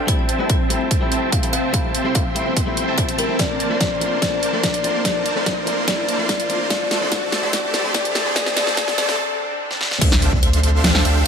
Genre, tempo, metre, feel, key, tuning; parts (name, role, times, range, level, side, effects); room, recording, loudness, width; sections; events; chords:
future bass; 145 BPM; 4/4; half-time; D minor; A4 = 440 Hz
shimmering ambient pad; sustained chords; 0.0-11.3 s; C3 to A5; -29 LUFS; equal; chorus, built-in reverb, sidechain pumping
supersaw chords; riff; 0.0-11.2 s; A3 to C6; -23 LUFS; right 1 dB; sidechain pumping, low-pass filter
riser, swell and impact; sound effects; 0.0-11.3 s; -28 LUFS; equal
kalimba; melody; 0.1-10.6 s; Bb4 to F5; -25 LUFS; left 4 dB; sidechain pumping, ping-pong delay
direct-recorded clean electric guitar; accompaniment; 0.1-9.2 s; E3 to E4; -29 LUFS; left 4 dB; sidechain pumping, ping-pong delay
dubstep drum kit; drums; 0.1-11.1 s; crash cymbal, hi-hat, snare drum; -22 LUFS; equal
electronic kick drum; drums; 0.1-10.4 s; -22 LUFS; equal
saturated sub bass; bass; 10.0-11.2 s; D2; -17 LUFS; equal; sidechain pumping
light reverb; high-pass filter; -17 LUFS; side -6 dB against mid
0.0-10.0 A section; 10.0-11.3 B section
build-up 0.0-10.0; riser 0.0-9.2; filter sweep on supersaw synth 0.0-10.0; filter sweep on ambient pad 0.0-10.0; filter sweep 0.0-10.0; drum fill 3.4-9.2, 9.7-10.0; break 9.2-10.0; swell 9.2-10.0; drop 10.0-11.3; impact 10.0-11.3
0.1 Fmaj7/C; 3.4 Bbmaj7; 6.5 Am7; 10.0 Dm11